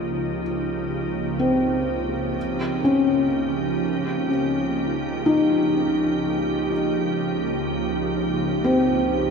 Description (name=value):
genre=ambient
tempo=62 BPM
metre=4/4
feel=straight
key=unclear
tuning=A4 = 435 Hz
part: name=soft additive organ-like pad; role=sustained chords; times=0.0-9.3 s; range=Db2 to G4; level=-24 LUFS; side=right 2 dB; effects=ensemble chorus, built-in reverb
part: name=felt-muted upright piano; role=arpeggios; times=0.0-9.3 s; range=C4 to F4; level=-22 LUFS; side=left 1 dB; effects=diffuse ambient delay
room=wet cathedral reverb, RT60 5.8 s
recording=in a vast, echoing space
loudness=-20 LUFS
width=side -5 dB against mid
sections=0.0-9.3 A section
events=fade-in on ambient pad 0.0-9.3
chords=0.0 Eb/Db